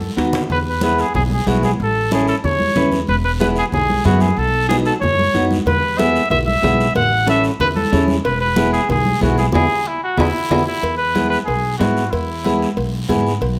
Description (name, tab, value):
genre	latin, cumbia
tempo	186 BPM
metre	4/4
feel	straight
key	E major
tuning	A4 = 440 Hz
part	warm trumpet	melody	0.0-12.8 s	E4 to F#5	-21 LUFS	equal	none
part	upright bass	bass	0.0-13.6 s	E1 to G#2	-24 LUFS	equal	none
part	congas	percussion	0.0-13.6 s	none	-25 LUFS	equal	none
part	clean electric guitar	accompaniment	0.2-13.3 s	B3 to B4	-23 LUFS	equal	none
part	guiro	percussion	0.2-13.6 s	none	-36 LUFS	equal	none
part	timbales and cowbell	percussion	0.2-0.5, 5.7-13.6 s	none	-28 LUFS	equal	none
room	moderate large studio reverb, RT60 1.2 s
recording	none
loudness	-17 LUFS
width	mono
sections	0.5-10.8 A section; 10.8-13.6 B section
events	drum fill 0.0-0.5, 9.5-10.8; band accent 9.5-10.8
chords	0.0 B7; 0.5 E; 1.8 A; 3.1 E; 4.4 B7; 5.7 E; 7.0 A; 8.3 E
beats	0.18 | 0.50 0.82 1.15 1.47 | 1.79 2.12 2.44 2.76 | 3.08 3.41 3.73 4.05 | 4.37 4.70 5.02 5.34 | 5.67 5.99 6.31 6.64 | 6.96 7.28 7.61 7.93 | 8.25 8.57 8.90 9.22 | 9.54 9.87 10.19 10.51 | 10.84 11.16 11.48 11.81 | 12.13 12.45 12.78 13.10 | 13.42